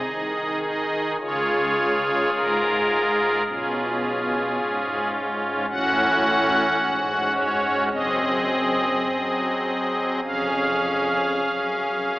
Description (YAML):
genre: classical, chorale-style piece for pipe organ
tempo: 53 BPM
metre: 4/4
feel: rubato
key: Db major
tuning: A4 = 441 Hz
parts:
  - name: pipe organ, strings celeste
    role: solo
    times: 0.0-12.2 s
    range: F1 to Gb5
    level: -20 LUFS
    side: equal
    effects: none
room: wet church reverb, RT60 2.6 s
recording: AM radio sound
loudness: -20 LUFS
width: side -18 dB against mid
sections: 0.0-12.2 A section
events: none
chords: 0.0 Ab5; 1.2 Db; 3.5 Db7/Cb; 5.7 Gbm/A; 7.9 Ab7/Gb; 10.2 Db/F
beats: 0.06 | 1.20 2.33 3.46 4.58 | 5.70 6.80 7.93 9.07 | 10.25 11.45